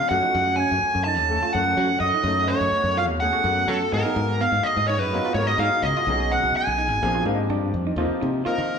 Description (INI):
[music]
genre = jazz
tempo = 126 BPM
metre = 4/4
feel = straight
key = unclear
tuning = A4 = 441 Hz
[part]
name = smooth overdriven lead guitar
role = melody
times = 0.0-8.8 s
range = A4 to A5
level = -24 LUFS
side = equal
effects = none
[part]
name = breathy mellow concert flute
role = second line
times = 0.0-7.2 s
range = A5 to A6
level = -26 LUFS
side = right 2 dB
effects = none
[part]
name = clear concert grand piano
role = accompaniment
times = 0.0-8.8 s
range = E#3 to E#5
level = -29 LUFS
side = left 2 dB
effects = none
[part]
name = deep dark ambient pad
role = sustained chords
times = 0.0-8.8 s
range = Eb3 to F#5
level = -34 LUFS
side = equal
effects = chorus, built-in reverb
[part]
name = modern bright fingered electric bass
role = bass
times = 0.1-8.8 s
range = G#1 to F#3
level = -26 LUFS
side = left 1 dB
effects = none
[part]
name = semi-hollow electric guitar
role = stabs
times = 0.2-8.6 s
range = B3 to F#4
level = -32 LUFS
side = right 5 dB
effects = none
[sound]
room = wet large studio reverb, RT60 1.3 s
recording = band playing live in one room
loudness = -20 LUFS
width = side -6 dB against mid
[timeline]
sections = 0.0-8.0 A section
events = grand piano fill 7.0-8.0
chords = 0.1 F#m; 3.9 G#m9; 6.1 B69; 7.0 A#9; 8.0 Eb69